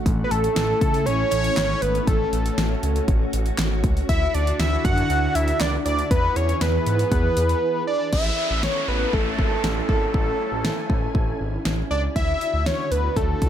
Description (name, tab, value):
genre	synth-pop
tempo	119 BPM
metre	4/4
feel	straight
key	A major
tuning	A4 = 440 Hz
part	soft string machine	sustained chords	0.0-13.5 s	D3 to G#5	-29 LUFS	equal	ensemble chorus
part	smooth synth bass	bass	0.1-13.5 s	G#1 to G#2	-24 LUFS	equal	none
part	pop drum kit	drums	0.1-13.5 s	crash cymbal, handclaps, hi-hat, kick drum, snare drum	-24 LUFS	equal	none
part	fat analog lead	melody	0.2-13.5 s	A4 to F#5	-24 LUFS	equal	phaser, digital delay
part	downlifter	sound effects	8.1-12.2 s	none	-30 LUFS	equal	none
room	digital ambience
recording	none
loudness	-19 LUFS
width	side -10 dB against mid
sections	0.0-8.1 A section; 8.1-13.5 B section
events	break 7.6-8.1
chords	0.1 A; 4.1 Dadd9; 6.1 E; 8.1 A; 12.2 Dadd9